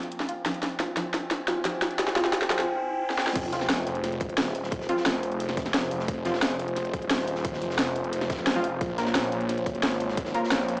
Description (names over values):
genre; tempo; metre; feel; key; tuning
dark technical drum and bass; 176 BPM; 4/4; straight; F minor; A4 = 440 Hz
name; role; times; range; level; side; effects
dark analog pad; sustained chords; 0.0-10.8 s; Bb3 to Ab5; -31 LUFS; equal; chorus, sidechain pumping
soft round pluck; arpeggios; 0.0-2.6 s; F3 to F4; -36 LUFS; right 1 dB; chorus, sidechain pumping, tape echo
drum and bass drum kit; drums; 0.0-10.8 s; crash cymbal, hi-hat, snare drum; -27 LUFS; equal; none
riser and sub drop; sound effects; 0.1-4.7 s; none; -40 LUFS; equal; none
orchestra-hit-like synth stab; stabs; 0.8-6.3, 8.6-10.4 s; F3 to Bb4; -32 LUFS; equal; built-in reverb, tape echo
snarling distorted saw bass; bass; 3.4-10.8 s; Eb1 to Bb1; -31 LUFS; equal; overdrive, sidechain pumping
crunchy breakbeat drum kit; drums; 3.4-10.8 s; hi-hat, snare drum; -39 LUFS; equal; none
electronic kick drum; drums; 3.4-10.2 s; none; -31 LUFS; equal; none
room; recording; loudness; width
moderate plate reverb, RT60 1.4 s, digital ambience; played on a big sound system in a bare room, large studio reverb, high-pass filter, small speaker sound; -24 LUFS; side -27 dB against mid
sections
0.0-3.4 A section; 3.4-10.8 B section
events
build-up 0.0-3.4; drum fill 0.0-2.7, 3.1; filter sweep on synth stab 0.0-3.4; break 2.7-3.4; drop 3.4-10.8; impact 3.4-4.7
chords
0.0 Fm; 8.8 Bbmadd9